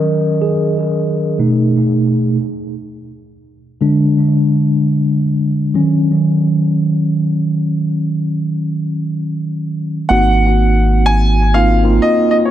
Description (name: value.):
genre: contemporary R&B.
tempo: 62 BPM.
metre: 4/4.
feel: swing 58% on 16ths.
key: Eb dorian.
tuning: A4 = 439 Hz.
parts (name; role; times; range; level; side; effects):
mellow tine electric piano; accompaniment; 0.0-12.5 s; B2 to Eb5; -14 LUFS; equal; medium stereo tremolo, analog delay.
warm grand piano; melody; 10.1-12.5 s; Db5 to Ab5; -15 LUFS; equal; analog delay.
rubbery square bass; bass; 10.1-12.0 s; Ab1; -13 LUFS; equal; none.
room: light reverb, small room reverb.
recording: echo-heavy mix.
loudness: -12 LUFS.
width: side -11 dB against mid.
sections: 0.0-10.1 A section; 10.1-12.5 B section.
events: tine electric piano solo 0.0-10.1.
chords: 0.0 Ebm7; 1.4 B7; 2.4 N.C.; 5.7 Ebm7; 10.1 Ab7.